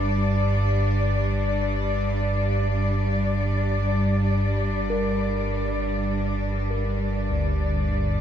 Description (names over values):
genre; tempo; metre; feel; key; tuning
dark ambient drone; free time; none; none; G minor; A4 = 440 Hz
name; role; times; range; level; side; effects
clear chamber cello section; sustained chords; 0.0-8.2 s; G2 to D5; -24 LUFS; equal; none
deep rumbling drone; drone; 0.0-8.2 s; G1 to G2; -26 LUFS; right 1 dB; built-in reverb
gamelan-type bossed gongs; arpeggios; 4.9-8.2 s; D2 to Bb4; -29 LUFS; left 1 dB; ping-pong delay
room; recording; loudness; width
wet cathedral reverb, RT60 5.8 s; dark, warm production; -22 LUFS; side -9 dB against mid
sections
0.0-8.2 A section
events
none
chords
0.0 G5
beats
free time